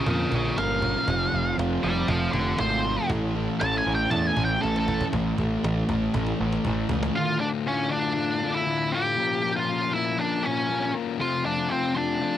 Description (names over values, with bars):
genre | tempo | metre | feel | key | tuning
quiet-loud alternative rock | 119 BPM | 4/4 | straight | D harmonic minor | A4 = 440 Hz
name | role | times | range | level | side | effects
octave-fuzz lead guitar | melody | 0.0-12.4 s | C4 to A5 | -26 LUFS | equal | distortion, cassette tape
twelve-string electric guitar | arpeggios | 0.0-5.1 s | F2 to Bb4 | -34 LUFS | right 8 dB | lush chorus, cassette tape
thick fuzz guitar | riff | 0.0-12.4 s | D2 to Bb4 | -28 LUFS | left 7 dB | distortion, cassette tape
thick fuzz guitar | riff | 0.0-7.1 s | F2 to Bb4 | -31 LUFS | right 10 dB | distortion, cassette tape
fuzz picked electric bass | bass | 0.1-7.1 s | F1 to F2 | -28 LUFS | right 1 dB | overdrive
cajon | drums | 0.1-7.1 s | none | -32 LUFS | right 1 dB | cassette tape
room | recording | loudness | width
light reverb | home recording on cassette | -23 LUFS | side -11 dB against mid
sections
0.0-5.1 A section; 5.1-7.2 B section; 7.2-12.4 C section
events
lead electric guitar solo 0.0-5.1; drum fill 4.6-5.1, 6.1-7.2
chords
0.0 Bbm; 1.1 F; 3.1 A; 5.1 A5; 7.2 Dm; 9.2 Bbm; 11.2 F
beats
0.07 0.58 | 1.08 1.59 2.10 2.60 | 3.11 3.62 4.12 4.63 | 5.13 5.64 6.14 6.65 | 7.15 7.66 8.16 8.67 | 9.17 9.68 10.18 10.69 | 11.19 11.70 12.20